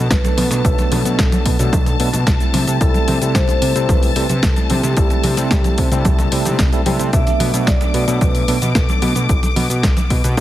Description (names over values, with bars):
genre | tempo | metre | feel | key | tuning
nu-disco, nu disco | 111 BPM | 4/4 | straight | B phrygian | A4 = 442 Hz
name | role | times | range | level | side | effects
vibraphone with soft mallets | melody | 0.0-9.3 s | G4 to E5 | -25 LUFS | right 1 dB | tape echo
clear symphonic string section | sustained chords | 0.0-10.4 s | A5 to D6 | -26 LUFS | left 6 dB | vintage 12-bit sampler grit, sidechain pumping
fat analog bass | bass | 0.0-10.4 s | B1 to C3 | -19 LUFS | equal | none
electronic kick drum | drums | 0.1-10.4 s | none | -17 LUFS | equal | studio reverb
house drum kit | drums | 0.1-10.4 s | hi-hat, shaker, snare drum | -23 LUFS | left 1 dB | studio reverb
tine electric piano | accompaniment | 0.2-9.3 s | F#3 to A4 | -23 LUFS | equal | medium stereo tremolo, sidechain pumping, ping-pong delay
congas | percussion | 0.2-10.4 s | none | -25 LUFS | right 2 dB | none
room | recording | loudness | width
little or no reverb | heavily compressed radio sound, multiband compression | -13 LUFS | side -14 dB against mid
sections
0.0-10.4 A section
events
none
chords
0.0 Bm7; 2.5 C6; 7.1 Bm7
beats
0.11 | 0.65 1.19 1.73 2.27 | 2.81 3.35 3.89 4.43 | 4.97 5.51 6.05 6.59 | 7.13 7.67 8.21 8.75 | 9.29 9.84 10.38